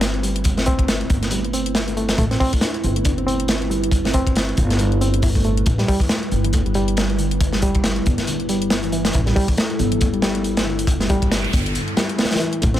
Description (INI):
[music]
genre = breakbeat, breaks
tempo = 138 BPM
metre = 4/4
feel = swing 57% on 16ths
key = unclear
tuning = A4 = 440 Hz
[part]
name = warbly tape-like pad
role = sustained chords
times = 0.0-12.8 s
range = G3 to B4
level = -26 LUFS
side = right 1 dB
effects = chorus, built-in reverb, sidechain pumping
[part]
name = reed electric piano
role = riff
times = 0.0-12.8 s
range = D3 to E4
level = -24 LUFS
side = equal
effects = overdrive, tube saturation, vintage 12-bit sampler grit, tape echo
[part]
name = upright bass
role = bass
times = 0.0-12.8 s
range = G1 to A1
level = -22 LUFS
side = equal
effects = tube saturation
[part]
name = crunchy breakbeat drum kit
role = drums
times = 0.0-12.8 s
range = hi-hat, kick drum, snare drum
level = -20 LUFS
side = equal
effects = none
[part]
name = electronic hi-hat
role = drums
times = 0.0-12.8 s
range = none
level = -33 LUFS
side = left 4 dB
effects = none
[part]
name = noise sweep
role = sound effects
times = 11.2-12.6 s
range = none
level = -31 LUFS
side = right 2 dB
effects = none
[sound]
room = little or no reverb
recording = none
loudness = -17 LUFS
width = side -12 dB against mid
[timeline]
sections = 0.0-12.8 A section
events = noise sweep 11.2-12.6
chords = 0.0 Amadd9; 5.7 Em